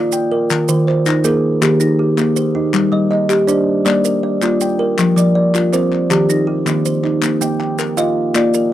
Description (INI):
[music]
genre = southern african traditional, mbira-style interlocking cycle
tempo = 107 BPM (dotted quarters)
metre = 12/8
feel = straight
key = Bb mixolydian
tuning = A4 = 440 Hz
[part]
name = kalimba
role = arpeggios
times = 0.0-8.7 s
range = Eb3 to G5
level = -16 LUFS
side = left 3 dB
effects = none
[part]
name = kalimba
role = arpeggios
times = 0.0-8.7 s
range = Eb3 to G5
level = -17 LUFS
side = right 4 dB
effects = none
[part]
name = maracas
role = percussion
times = 0.1-8.7 s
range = none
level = -26 LUFS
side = right 15 dB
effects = none
[part]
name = group handclap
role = percussion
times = 0.5-8.5 s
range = none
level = -24 LUFS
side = left 7 dB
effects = none
[sound]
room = light reverb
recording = dry, close 1970s-style studio recording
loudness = -13 LUFS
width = side -12 dB against mid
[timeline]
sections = 0.0-8.7 A section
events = none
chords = 0.0 Bb; 0.5 Eb; 2.7 G5; 3.9 Bb; 5.0 F5; 6.1 Eb; 7.2 Bb